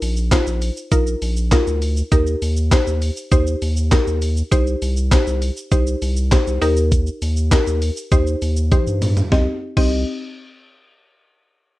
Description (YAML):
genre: dance-pop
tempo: 100 BPM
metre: 4/4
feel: straight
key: C minor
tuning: A4 = 439 Hz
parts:
  - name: mallet-like synth pluck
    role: accompaniment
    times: 0.0-10.0 s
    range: C4 to Eb5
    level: -22 LUFS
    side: left 1 dB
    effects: chorus, sidechain pumping
  - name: saturated sub bass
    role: bass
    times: 0.0-10.0 s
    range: Bb1 to G2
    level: -20 LUFS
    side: equal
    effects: sidechain pumping
  - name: gated 80s digital drum machine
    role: drums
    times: 0.0-9.9 s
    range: crash cymbal, handclaps, hi-hat, kick drum, shaker, snare drum, toms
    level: -19 LUFS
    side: equal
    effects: gated reverb, gated reverb snare
room: light reverb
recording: rough home demo mix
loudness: -16 LUFS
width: side -17 dB against mid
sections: 0.0-9.3 A section; 9.3-11.7 B section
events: drop 0.0-9.3; drum fill 8.7-9.3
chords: 0.0 Bbsus4; 2.1 Eb; 4.5 Cm; 6.6 Eb; 9.3 Cm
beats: 0.32 0.92 1.52 | 2.12 2.72 3.32 3.92 | 4.52 5.12 5.72 6.32 | 6.92 7.52 8.12 8.72 | 9.32 9.92